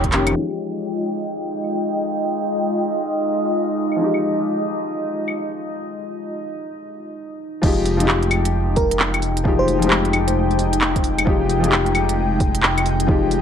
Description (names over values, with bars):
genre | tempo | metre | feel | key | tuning
future garage | 132 BPM | 4/4 | swing 64% on 16ths | F minor | A4 = 440 Hz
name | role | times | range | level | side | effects
felt-muted upright piano | accompaniment | 0.0-13.4 s | Eb3 to G4 | -24 LUFS | left 3 dB | vintage 12-bit sampler grit, sidechain pumping, analog delay
airy breathy pad | sustained chords | 0.0-13.4 s | Ab3 to G5 | -24 LUFS | left 2 dB | chorus, vintage 12-bit sampler grit, sidechain pumping
dark detuned saw bass | bass | 0.0-0.3, 7.6-13.4 s | F1 | -22 LUFS | right 1 dB | sidechain pumping
electronic kick drum | drums | 0.0-0.1, 7.6-13.2 s | none | -20 LUFS | right 1 dB | none
organic electronic drum kit | drums | 0.0-13.4 s | claves, crash cymbal, handclaps, hi-hat | -21 LUFS | equal | none
drifting glass-harmonics texture | texture | 1.3-6.7 s | Eb4 to Eb5 | -26 LUFS | right 3 dB | chorus, built-in reverb
bell-like FM electric piano | melody | 8.8-9.9 s | Bb4 to C5 | -24 LUFS | right 1 dB | chorus, cassette tape, analog delay
room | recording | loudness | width
light reverb | dry, gritty hardware recording, low-pass filter | -17 LUFS | side -8 dB against mid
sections
0.4-7.6 A section; 7.6-13.4 B section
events
filter sweep 0.4-7.6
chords
0.4 Fm9